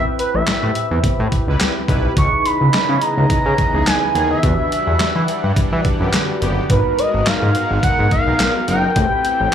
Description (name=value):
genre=early-eighties boogie funk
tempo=106 BPM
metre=4/4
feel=swing 56% on 16ths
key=C# dorian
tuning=A4 = 439 Hz
part: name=expressive synth lead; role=melody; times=0.0-9.5 s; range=B4 to C#6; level=-19 LUFS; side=right 1 dB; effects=chorus, slapback echo, analog delay
part: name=mellow synth brass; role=accompaniment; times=0.0-9.5 s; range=B3 to B4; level=-24 LUFS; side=left 2 dB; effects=chorus, slapback echo
part: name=detuned 8-bit digital drum machine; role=drums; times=0.2-9.5 s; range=handclaps, hi-hat, kick drum, snare drum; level=-19 LUFS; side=equal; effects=none
part: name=fat analog bass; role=bass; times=0.3-9.5 s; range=F#1 to E3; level=-18 LUFS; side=equal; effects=none
part: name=analog synth brass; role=second line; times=1.5-8.9 s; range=D3 to B4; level=-24 LUFS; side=right 1 dB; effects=chorus, slapback echo
part: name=lush unison pad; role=sustained chords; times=2.3-9.5 s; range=C#3 to F#5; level=-26 LUFS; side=equal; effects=chorus
room=light reverb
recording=live gig heard through the venue's PA, club reverb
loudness=-14 LUFS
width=side -9 dB against mid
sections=0.0-9.5 A section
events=none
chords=0.0 Am9; 2.2 C#m9; 4.4 Em9; 6.7 G#m9; 9.0 Am9